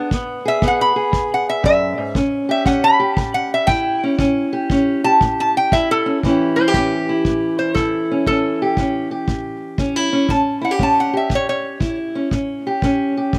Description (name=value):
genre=acoustic country blues, solo or duo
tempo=118 BPM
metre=4/4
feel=swing 66% on 8ths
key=A mixolydian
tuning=A4 = 440 Hz
part: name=fingerpicked steel-string acoustic guitar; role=accompaniment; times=0.0-13.4 s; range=E2 to G#4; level=-21 LUFS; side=equal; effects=slapback echo
part: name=kick drum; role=drums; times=0.1-13.4 s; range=none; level=-23 LUFS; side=equal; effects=none
part: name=lap resonator guitar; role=melody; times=0.5-12.0 s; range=G4 to B5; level=-20 LUFS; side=equal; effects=slapback echo
room=little or no reverb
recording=recorded outdoors, with no room sound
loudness=-18 LUFS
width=mono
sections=0.0-6.2 A section; 6.2-13.4 B section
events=resonator guitar played with a steel bar solo 0.0-6.2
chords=0.0 E; 2.2 A7